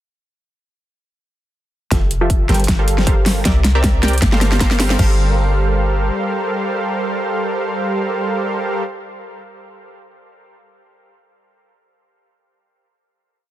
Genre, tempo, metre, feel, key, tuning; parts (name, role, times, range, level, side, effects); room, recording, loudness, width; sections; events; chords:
future bass; 156 BPM; 4/4; swing 54% on 16ths, half-time; G dorian; A4 = 440 Hz
supersaw stab; riff; 1.9-8.8 s; F3 to G5; -20 LUFS; right 1 dB; cassette tape, sidechain pumping, low-pass filter, tape echo
warm 808-style bass; bass; 1.9-6.1 s; F1 to C2; -17 LUFS; equal; sidechain pumping
big-room dance drum kit; drums; 1.9-5.1 s; crash cymbal, hi-hat, snare drum; -19 LUFS; equal; overdrive
electronic kick drum; drums; 1.9-5.1 s; -17 LUFS; equal
little or no reverb; dense, heavily limited modern master; -14 LUFS; side -13 dB against mid
1.9-5.0 build; 5.0-8.1 final chord
build-up 1.9-5.0; drum fill 1.9-5.0; filter sweep on supersaw synth 1.9-5.0
1.9 Fmaj9; 2.5 Gm11; 3.5 C7; 4.2 Gm11